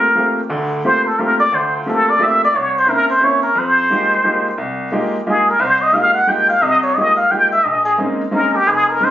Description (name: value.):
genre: jazz.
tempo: 176 BPM.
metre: 3/4.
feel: swing 64% on 8ths.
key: G dorian, F minor from 3.6 s.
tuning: A4 = 441 Hz.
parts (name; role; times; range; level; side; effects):
trumpet with plunger mute; melody; 0.0-9.1 s; F4 to G5; -13 LUFS; equal; none.
clear baby grand piano; accompaniment; 0.0-9.1 s; F1 to G4; -20 LUFS; equal; none.
room: moderate studio reverb, RT60 0.5 s.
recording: recorded on a phone in the room, studio ambience, nothing above 7.5 kHz.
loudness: -13 LUFS.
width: side -12 dB against mid.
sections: 0.0-3.6 A section; 3.6-9.1 A section.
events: muted trumpet solo 0.0-9.1.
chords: 0.0 Gm11; 2.5 C7b9; 3.6 Fm11; 7.6 Bbm11.